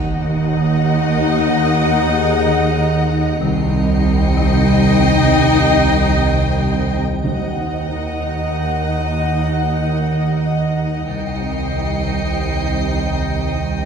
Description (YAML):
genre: cinematic, suspense film score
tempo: 94 BPM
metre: 3/4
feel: straight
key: unclear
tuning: A4 = 440 Hz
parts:
  - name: warm studio violin section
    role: melody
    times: 0.0-13.9 s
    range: Gb5 to G5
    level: -25 LUFS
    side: left 5 dB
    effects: none
  - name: warm studio violin section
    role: second line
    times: 0.0-13.9 s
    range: Eb5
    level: -25 LUFS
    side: left 1 dB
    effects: none
  - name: rich studio viola section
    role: accompaniment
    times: 0.0-13.9 s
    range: Eb4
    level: -23 LUFS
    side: left 3 dB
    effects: none
  - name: icy glass pad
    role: sustained chords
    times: 0.3-13.9 s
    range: Bb4 to G5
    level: -28 LUFS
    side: right 1 dB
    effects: chorus, built-in reverb
  - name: marimba with soft mallets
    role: riff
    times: 0.0-13.8 s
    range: C3 to Eb4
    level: -23 LUFS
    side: right 2 dB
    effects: none
  - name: warm chamber cello section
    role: bass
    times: 0.0-13.9 s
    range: C2 to Eb2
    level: -22 LUFS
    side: right 2 dB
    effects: none
  - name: warm studio double bass section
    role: bass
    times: 0.0-13.9 s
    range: C2 to Eb2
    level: -22 LUFS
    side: right 1 dB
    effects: none
  - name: sub bass with octave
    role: drone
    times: 0.0-13.9 s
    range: Eb2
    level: -24 LUFS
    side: right 2 dB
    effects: none
  - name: sub drop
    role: sound effects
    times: 0.0-1.5 s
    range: none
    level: -30 LUFS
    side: equal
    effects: none
  - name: concert harp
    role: texture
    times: 0.6-4.5, 8.5-13.9 s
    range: Ab4 to A6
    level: -27 LUFS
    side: left 6 dB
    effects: none
  - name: warm studio violin section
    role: texture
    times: 3.4-6.9, 11.1-13.9 s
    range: C7 to Db7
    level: -32 LUFS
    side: left 1 dB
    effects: none
  - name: timpani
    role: percussion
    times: 7.2-8.2 s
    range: Eb3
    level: -27 LUFS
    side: equal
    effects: none
room: wet recital hall reverb, RT60 1.6 s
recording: heard from further back in the room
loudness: -14 LUFS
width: side -6 dB against mid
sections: 0.0-13.9 A section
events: impact 0.0-1.5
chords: 0.0 Ebm; 3.4 Cm; 7.2 Ebm; 11.1 Cm